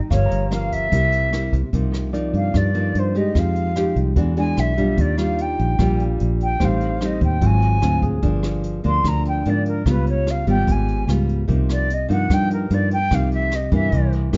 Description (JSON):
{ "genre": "bossa nova", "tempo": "148 BPM", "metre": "4/4", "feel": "straight", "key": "C minor", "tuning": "A4 = 438 Hz", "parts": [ { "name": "clear concert grand piano", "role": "accompaniment", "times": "0.0-3.4, 6.6-8.4, 14.3-14.4 s", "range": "G4 to Bb5", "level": "-36 LUFS", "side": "equal", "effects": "none" }, { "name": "nylon-string guitar", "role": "accompaniment", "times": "0.0-14.4 s", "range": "G2 to G4", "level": "-25 LUFS", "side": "equal", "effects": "none" }, { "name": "concert flute", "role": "melody", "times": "0.1-14.1 s", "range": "Bb4 to C6", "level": "-27 LUFS", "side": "equal", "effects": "none" }, { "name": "fingered electric bass", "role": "bass", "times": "0.1-14.4 s", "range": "G1 to Ab2", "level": "-23 LUFS", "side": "equal", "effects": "none" }, { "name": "jazz brush drum kit", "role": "drums", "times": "0.1-14.4 s", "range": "hi-hat, kick drum, rim click", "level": "-28 LUFS", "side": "equal", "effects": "none" } ], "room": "light reverb", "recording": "dark, warm production, nothing above 7.6 kHz", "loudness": "-20 LUFS", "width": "mono", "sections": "0.0-1.7 A section; 1.7-14.4 B section", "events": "flute solo 1.7-14.4", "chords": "0.1 Gm7b5; 0.9 C7; 1.7 Cm11; 3.4 Fm9; 4.2 E9; 5.0 Ebmaj9; 6.6 Am7b5; 7.4 Ab6; 8.2 Gm7; 9.9 Db7#11; 11.5 Cm7" }